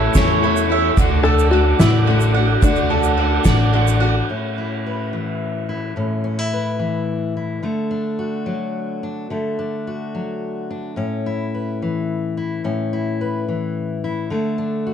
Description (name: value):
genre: indie folk with a building arrangement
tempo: 72 BPM (dotted quarters)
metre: 6/8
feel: straight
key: A major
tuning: A4 = 440 Hz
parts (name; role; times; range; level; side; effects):
- open-back banjo; melody; 0.0-4.0 s; D4 to A4; -21 LUFS; left 4 dB; none
- picked old ladder-braced acoustic guitar; accompaniment; 0.0-4.3 s; A2 to F#4; -21 LUFS; left 7 dB; none
- mellow tonewheel organ; sustained chords; 0.0-4.3 s; A4 to D6; -28 LUFS; right 2 dB; slow rotary speaker, chorus vibrato
- bowl-back mandolin; arpeggios; 0.0-4.3 s; E4 to F#5; -23 LUFS; right 9 dB; tape echo
- upright bass; bass; 0.0-4.2 s; A1 to E2; -18 LUFS; equal; none
- egg shaker; percussion; 0.1-4.0 s; none; -34 LUFS; right 11 dB; none
- soft-mallet drum kit; drums; 0.2-4.1 s; kick drum, ride cymbal, snare drum; -21 LUFS; right 2 dB; none
- fingerpicked steel-string acoustic guitar; accompaniment; 4.3-14.9 s; A2 to B4; -22 LUFS; left 2 dB; none
room: light reverb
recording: dark, warm production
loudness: -17 LUFS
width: side -8 dB against mid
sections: 0.0-4.3 A section; 4.3-14.9 B section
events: none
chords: 0.0 A; 1.0 D; 4.3 A; 7.6 D; 11.0 A; 14.3 D5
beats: 0.16 | 0.98 1.81 | 2.64 3.46 | 4.29 5.12 | 5.96 6.79 | 7.62 8.46 | 9.29 10.13 | 10.97 11.80 | 12.64 13.48 | 14.31